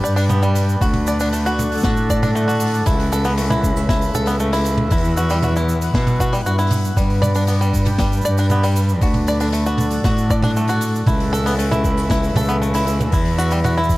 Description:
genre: folktronica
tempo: 117 BPM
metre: 4/4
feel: straight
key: G lydian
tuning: A4 = 440 Hz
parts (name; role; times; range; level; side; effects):
- mellow accordion; sustained chords; 0.0-14.0 s; C#3 to G5; -25 LUFS; equal; none
- bluegrass banjo; arpeggios; 0.0-14.0 s; G3 to D5; -23 LUFS; equal; vintage 12-bit sampler grit, digital delay
- rich cello; bass; 0.0-14.0 s; C#2 to B2; -18 LUFS; equal; none
- jazz brush drum kit; drums; 0.1-14.0 s; cabasa, hi-hat, snare drum, toms; -25 LUFS; right 1 dB; none
- electronic kick drum; drums; 0.8-14.0 s; none; -20 LUFS; equal; none
room: light reverb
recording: dark, warm production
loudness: -15 LUFS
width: side -18 dB against mid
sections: 0.0-14.0 A section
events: none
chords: 0.0 G; 0.8 D; 2.9 Aadd9/C#; 4.9 Emadd9; 7.0 G; 9.0 D; 11.1 Aadd9/C#; 13.1 Esus2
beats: 0.30 | 0.82 1.33 1.84 2.35 | 2.87 3.38 3.89 4.41 | 4.92 5.43 5.94 6.46 | 6.97 7.48 8.00 8.51 | 9.02 9.53 10.05 10.56 | 11.07 11.59 12.10 12.61 | 13.12 13.64

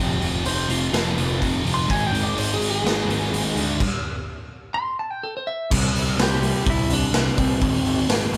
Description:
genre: quiet-loud alternative rock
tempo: 126 BPM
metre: 4/4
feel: straight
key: unclear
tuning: A4 = 440 Hz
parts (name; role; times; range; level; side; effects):
- clean electric guitar; melody; 0.0-8.1 s; C4 to C6; -29 LUFS; equal; none
- scooped high-gain guitar; riff; 0.0-3.8 s; F2 to G#3; -30 LUFS; equal; distortion
- thick fuzz guitar; riff; 0.0-8.4 s; F2 to C4; -30 LUFS; equal; distortion
- fuzz picked electric bass; bass; 0.0-8.4 s; F1 to D2; -28 LUFS; equal; overdrive
- raw garage drum kit; drums; 0.2-8.4 s; crash cymbal, hi-hat, kick drum, snare drum; -26 LUFS; equal; none
room: light reverb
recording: band playing live in one room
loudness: -22 LUFS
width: mono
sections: 0.0-5.7 A section; 5.7-8.4 B section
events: half time 0.0-5.7; clean electric guitar solo 0.0-5.7; stop 3.8-5.7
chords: 0.0 F5; 1.9 G#5; 3.8 N.C.; 5.7 C5; 7.6 G#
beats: 0.45 0.93 1.41 | 1.89 2.37 2.84 3.32 | 3.80 4.28 4.75 5.23 | 5.71 6.18 6.66 7.14 | 7.62 8.09

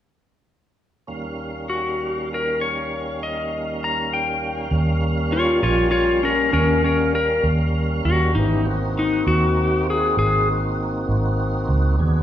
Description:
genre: slow blues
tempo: 66 BPM (dotted quarters)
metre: 12/8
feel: straight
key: Eb mixolydian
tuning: A4 = 443 Hz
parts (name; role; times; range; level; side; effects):
- tonewheel organ; sustained chords; 1.1-12.2 s; Eb2 to F5; -26 LUFS; right 2 dB; overdrive, chorus vibrato, slow rotary speaker
- clean lap steel guitar; melody; 1.7-10.5 s; Db4 to Bb5; -21 LUFS; left 2 dB; none
- vintage muted fingered electric bass; bass; 4.7-12.2 s; Ab1 to Eb2; -21 LUFS; right 1 dB; none
room: wet recital hall reverb, RT60 1.7 s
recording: recorded in a church or concert hall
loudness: -18 LUFS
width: side -11 dB against mid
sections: 1.1-4.7 A section; 4.7-12.2 B section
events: none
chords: 1.1 Eb7; 4.7 Eb9; 8.4 Ab9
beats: | 1.07 1.99 2.90 3.81 | 4.72 5.63 6.54 7.45 | 8.36 9.27 10.18 11.09 | 12.00

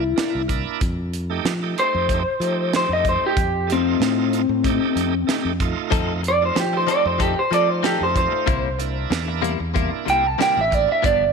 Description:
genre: straight-eighth soul blues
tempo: 94 BPM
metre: 4/4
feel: swing 55% on 16ths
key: unclear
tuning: A4 = 441 Hz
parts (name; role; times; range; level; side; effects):
- electric guitar through a small old amp; melody; 0.0-11.3 s; C4 to A5; -20 LUFS; equal; none
- bright tonewheel organ; accompaniment; 0.0-11.0 s; A3 to G4; -28 LUFS; right 14 dB; slow rotary speaker, overdrive
- fingered electric bass; bass; 0.0-11.3 s; G1 to F3; -26 LUFS; equal; none
- tight funk drum kit; drums; 0.2-11.2 s; hi-hat, kick drum, snare drum; -25 LUFS; right 2 dB; none
- direct-recorded clean electric guitar; stabs; 5.9-11.2 s; G2 to A4; -26 LUFS; left 13 dB; lush chorus
room: light reverb, small room ambience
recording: 1960s-style stereo with parts hard left and right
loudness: -18 LUFS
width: side -5 dB against mid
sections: 0.0-11.3 A section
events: clean electric guitar solo 0.0-11.3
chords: 0.0 C7; 0.8 F7; 8.5 C7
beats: 0.17 | 0.81 1.45 2.09 2.73 | 3.37 4.00 4.64 5.28 | 5.92 6.56 7.20 7.83 | 8.47 9.11 9.75 10.39 | 11.03

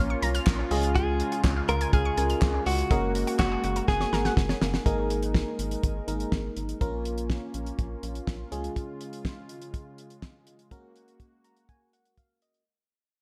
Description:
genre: synth-pop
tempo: 123 BPM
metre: 4/4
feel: straight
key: unclear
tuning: A4 = 440 Hz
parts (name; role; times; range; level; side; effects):
- direct-recorded clean electric guitar; melody; 0.0-4.3 s; Gb4 to Db5; -33 LUFS; equal; delay
- FM electric piano; accompaniment; 0.0-12.6 s; Ab3 to Bb5; -36 LUFS; equal; chorus
- brassy analog pad; sustained chords; 0.0-12.6 s; Db3 to Bb4; -38 LUFS; equal; chorus
- analog pluck; arpeggios; 0.0-4.7 s; F3 to F6; -38 LUFS; equal; chorus, delay
- rubbery square bass; bass; 0.0-8.7 s; Gb1 to Db2; -33 LUFS; equal; none
- damped 70s drum kit; drums; 0.2-12.7 s; handclaps, hi-hat, kick drum, snare drum; -29 LUFS; equal; none
room: light reverb, small room ambience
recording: none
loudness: -27 LUFS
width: mono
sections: 0.0-4.9 A section; 4.9-12.7 B section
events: drum fill 3.9-4.9; fade-out 4.9-12.7; FM electric piano fill 11.2-12.7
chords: 0.0 Bbm; 0.7 Db; 2.9 Gbadd9; 4.9 Absus2; 6.8 Bbm; 8.5 Db; 10.7 Gbadd9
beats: 0.47 | 0.95 1.44 1.93 2.42 | 2.91 3.39 3.88 4.37 | 4.86 5.35 5.83 6.32 | 6.81 7.30 7.79 8.27 | 8.76 9.25 9.74 10.22 | 10.71 11.20 11.69 12.18

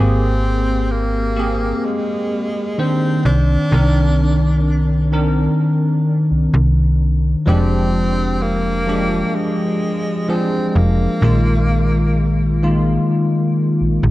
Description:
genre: vaporwave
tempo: 64 BPM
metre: 4/4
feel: straight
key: F dorian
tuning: A4 = 435 Hz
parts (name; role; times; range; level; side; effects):
- breathy tenor saxophone; melody; 0.0-12.6 s; Ab3 to D4; -24 LUFS; equal; tape echo
- barky tine electric piano; accompaniment; 0.0-14.1 s; Eb3 to C5; -17 LUFS; left 1 dB; analog chorus, analog delay
- slap-like FM bass; bass; 0.0-14.1 s; F1 to C2; -17 LUFS; equal; tube saturation
room: moderate lush hall reverb, RT60 2.4 s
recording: dreamy mix soaked in reverb, cassette tape, nothing above 10.8 kHz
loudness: -14 LUFS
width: side -17 dB against mid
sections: 0.0-14.1 A section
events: none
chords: 0.0 Abmaj9; 3.3 Cm9; 7.5 Fm69; 11.2 Bb7sus4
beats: 0.91 1.85 2.78 | 3.72 4.66 5.60 6.53 | 7.47 8.41 9.35 10.28 | 11.22 12.16 13.10 14.03

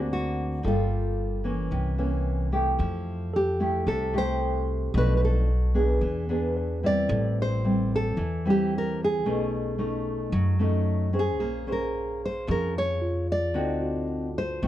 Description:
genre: bossa nova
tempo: 112 BPM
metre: 4/4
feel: straight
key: unclear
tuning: A4 = 439 Hz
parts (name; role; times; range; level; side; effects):
- nylon-string guitar; melody; 0.0-14.6 s; F4 to D5; -29 LUFS; equal; none
- mellow tine electric piano; accompaniment; 0.0-14.7 s; F4 to D5; -38 LUFS; equal; none
- nylon-string guitar; accompaniment; 0.0-14.7 s; A2 to C5; -28 LUFS; equal; none
- upright bass; bass; 0.0-14.7 s; G1 to F#2; -28 LUFS; equal; none
room: little or no reverb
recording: dark, warm production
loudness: -24 LUFS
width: side -13 dB against mid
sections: 0.0-7.1 A section; 7.1-14.7 B section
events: none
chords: 0.0 Daug7; 0.6 Gm9; 1.7 C7b9; 2.8 Fmaj9; 4.9 Bm7b5; 6.0 E7; 7.1 Am7; 9.2 B9; 11.4 Bbm9; 13.6 D7b9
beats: 0.10 | 0.64 1.17 1.71 2.25 | 2.79 3.33 3.86 4.40 | 4.94 5.48 6.02 6.56 | 7.09 7.63 8.17 8.71 | 9.25 9.79 10.33 10.86 | 11.40 11.94 12.48 13.02 | 13.55 14.09 14.63

